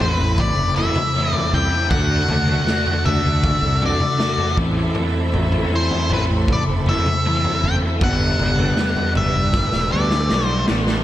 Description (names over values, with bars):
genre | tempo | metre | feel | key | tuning
psychedelic rock | 79 BPM | 4/4 | straight | A dorian | A4 = 442 Hz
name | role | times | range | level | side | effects
octave-fuzz lead guitar | melody | 0.0-10.6 s | B4 to G5 | -22 LUFS | left 2 dB | distortion, ping-pong delay
clear studio string section | sustained chords | 0.0-11.0 s | C4 to B5 | -29 LUFS | right 4 dB | none
raw garage guitar | riff | 0.0-11.0 s | G2 to F#4 | -24 LUFS | left 1 dB | overdrive, rotary speaker
fuzz fingered electric bass | bass | 0.0-11.0 s | E1 to D2 | -22 LUFS | equal | overdrive
raw garage drum kit | drums | 0.0-11.0 s | kick drum, snare drum, toms | -21 LUFS | equal | none
room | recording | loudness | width
moderate plate reverb, RT60 2.8 s | dreamy mix soaked in reverb | -16 LUFS | side -13 dB against mid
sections
0.0-11.0 A section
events
drum fill 9.5-11.0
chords
0.0 Amadd9; 1.9 Dadd9; 4.6 Amadd9; 8.0 Gadd9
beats
0.39 1.15 | 1.91 2.68 3.44 4.20 | 4.96 5.73 6.49 7.25 | 8.02 8.78 9.54 10.31